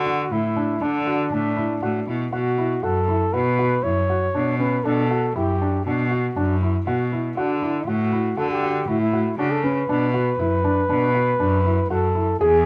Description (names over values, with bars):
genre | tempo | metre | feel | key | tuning
contemporary instrumental, chamber music in an uneven meter | 119 BPM | 5/4 | straight | B minor | A4 = 441 Hz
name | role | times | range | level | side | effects
breathy flugelhorn | melody | 0.0-12.7 s | D4 to C#5 | -26 LUFS | equal | none
bright cello | bass | 0.0-12.7 s | E2 to D3 | -25 LUFS | equal | none
felt-muted upright piano | arpeggios | 0.1-12.6 s | C#4 to G#4 | -27 LUFS | equal | none
room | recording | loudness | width
light reverb | none | -22 LUFS | mono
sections
0.0-12.4 A section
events
none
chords
0.0 D; 2.3 Bm; 7.4 D; 9.9 Bm